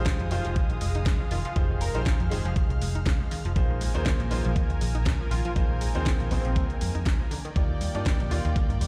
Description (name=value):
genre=nu-disco, nu disco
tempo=120 BPM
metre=4/4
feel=swing 55% on 16ths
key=F dorian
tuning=A4 = 439 Hz
part: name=clear grand piano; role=accompaniment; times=0.0-8.9 s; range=Ab3 to D5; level=-38 LUFS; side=equal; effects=analog delay
part: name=lush unison pad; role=sustained chords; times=0.0-8.9 s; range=Ab3 to F6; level=-42 LUFS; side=equal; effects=chorus, sidechain pumping
part: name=fingered electric bass with an envelope filter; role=bass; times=0.0-8.9 s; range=F1 to Bb2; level=-30 LUFS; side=equal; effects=none
part: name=unison pluck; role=arpeggios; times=0.1-8.9 s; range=D3 to Eb4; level=-41 LUFS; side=equal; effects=sidechain pumping, analog delay
part: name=electronic kick drum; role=drums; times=0.1-8.7 s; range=none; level=-27 LUFS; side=equal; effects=overdrive
part: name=house drum kit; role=drums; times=0.1-8.9 s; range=hi-hat, snare drum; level=-38 LUFS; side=equal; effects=overdrive
part: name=unison lead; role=melody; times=0.3-8.5 s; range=C4 to Bb4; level=-40 LUFS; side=equal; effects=analog chorus, analog delay
room=digital ambience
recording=played on a big sound system in a bare room, large studio reverb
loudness=-26 LUFS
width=mono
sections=0.0-8.9 A section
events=none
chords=0.0 Fm7; 3.6 Bb7sus4; 7.3 Ebmaj7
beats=0.06 0.56 1.06 | 1.56 2.06 2.56 3.06 | 3.56 4.06 4.56 5.06 | 5.56 6.06 6.56 7.06 | 7.56 8.06 8.56